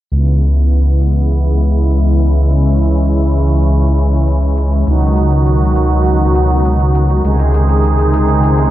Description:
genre	synthwave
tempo	101 BPM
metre	4/4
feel	straight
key	C# minor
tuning	A4 = 440 Hz
part	brassy analog pad	sustained chords	0.1-8.7 s	B2 to G#4	-16 LUFS	right 1 dB	chorus
part	dark detuned saw bass	bass	0.1-8.7 s	C#2	-11 LUFS	equal	tube saturation
part	electronic hi-hat	drums	0.1-8.7 s	none	-42 LUFS	equal	none
room	light reverb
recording	bright 1980s-style digital production, low-pass filter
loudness	-10 LUFS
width	side -14 dB against mid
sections	0.1-8.7 A section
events	filter sweep on detuned saw bass 0.1-8.7; filter sweep 0.1-8.7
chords	0.1 C#m7; 4.9 B/C#; 7.2 G#/C#

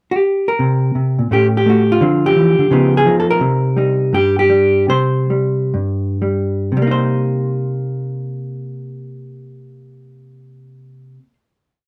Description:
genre	solo jazz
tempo	114-174 BPM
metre	4/4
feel	swing 66% on 8ths, rubato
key	C minor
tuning	A4 = 440 Hz
part	hollow-body jazz guitar	solo	0.1-11.3 s	G2 to C5	-16 LUFS	equal	none
room	light reverb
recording	none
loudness	-15 LUFS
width	mono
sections	0.0-0.6 pickup bar; 0.6-6.7 A section; 6.7-10.8 final chord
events	slowing down 3.4-6.7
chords	0.0 N.C.; 0.6 Bbsus2; 1.3 A7; 2.0 Dm7; 2.7 Db9; 3.4 Cm7

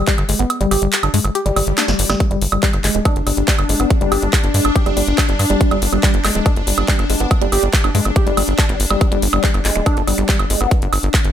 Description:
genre	psychedelic trance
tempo	141 BPM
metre	4/4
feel	straight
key	G major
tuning	A4 = 440 Hz
part	woody wave-folded pluck	riff	0.0-10.7 s	G3 to G4	-21 LUFS	moving between left 6 dB and right 3 dB	chorus, auto-pan, sidechain pumping, ping-pong delay
part	tight sequencer bass	bass	0.0-11.3 s	D1 to G2	-19 LUFS	equal	none
part	big-room dance drum kit	drums	0.1-11.3 s	handclaps, hi-hat, snare drum, woodblock	-20 LUFS	right 1 dB	studio reverb
part	electronic kick drum	drums	0.1-11.2 s	none	-16 LUFS	equal	studio reverb
part	swell	sound effects	1.5-2.2 s	none	-26 LUFS	left 2 dB	none
part	evolving wavetable pad	sustained chords	3.0-11.3 s	D4	-23 LUFS	left 3 dB	phaser, built-in reverb, sidechain pumping
room	digital ambience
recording	none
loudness	-14 LUFS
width	side -10 dB against mid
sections	0.0-11.3 A section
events	kick drops out 0.5-2.2; swell 1.5-2.2; drum fill 1.8-2.2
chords	0.0 G5

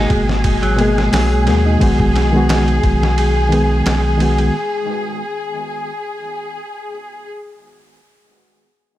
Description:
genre	trip hop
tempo	88 BPM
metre	4/4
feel	swing 54% on 16ths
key	unclear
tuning	A4 = 441 Hz
part	reed electric piano	accompaniment	0.0-4.6 s	B2 to G#4	-18 LUFS	equal	overdrive, harmonic tremolo, tape echo
part	muted symphonic violin section	sustained chords	0.0-7.3 s	G#4	-22 LUFS	left 2 dB	none
part	electric guitar at the edge of break-up	arpeggios	0.0-1.8 s	F#3 to D#4	-25 LUFS	right 2 dB	low-pass filter, tape echo
part	warm sub bass	bass	0.0-4.5 s	G#1 to D#2	-17 LUFS	equal	none
part	trip hop sampler-style drum kit	drums	0.1-4.5 s	hi-hat, kick drum, ride cymbal, snare drum	-21 LUFS	equal	small room ambience
room	light reverb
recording	echo-heavy mix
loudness	-13 LUFS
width	side -14 dB against mid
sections	0.0-9.0 A section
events	filter sweep on clean electric guitar 0.0-1.8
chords	0.0 G#m9; 1.8 B6; 4.5 N.C.

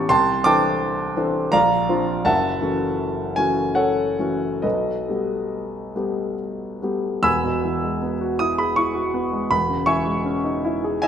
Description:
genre	classical, impressionist solo piano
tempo	66-88 BPM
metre	3/4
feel	rubato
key	unclear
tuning	A4 = 442 Hz
part	warm grand piano	solo	0.0-11.1 s	E1 to E6	-19 LUFS	equal	none
room	moderate recital hall reverb, RT60 1.4 s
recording	none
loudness	-19 LUFS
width	side -8 dB against mid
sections	0.0-7.2 A section; 7.2-11.1 B section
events	none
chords	0.1 C69; 1.5 Bbadd9; 2.3 F#m7; 4.6 Baug7; 7.2 Eadd9; 9.5 C#madd9/E

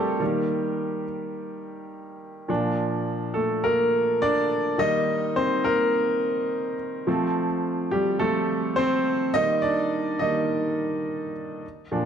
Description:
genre	pop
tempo	105 BPM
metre	4/4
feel	straight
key	unclear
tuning	A4 = 441 Hz
part	clear grand piano	solo	0.0-12.1 s	Bb2 to Eb5	-23 LUFS	equal	none
room	moderate scoring stage reverb, RT60 1.8 s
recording	dark, warm production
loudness	-22 LUFS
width	side -8 dB against mid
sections	0.0-2.5 A section; 2.5-11.6 B section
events	grand piano solo 0.0-2.5, 2.5-11.6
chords	0.2 Eb; 2.5 Bb; 4.8 Eb; 7.1 F; 9.4 Eb

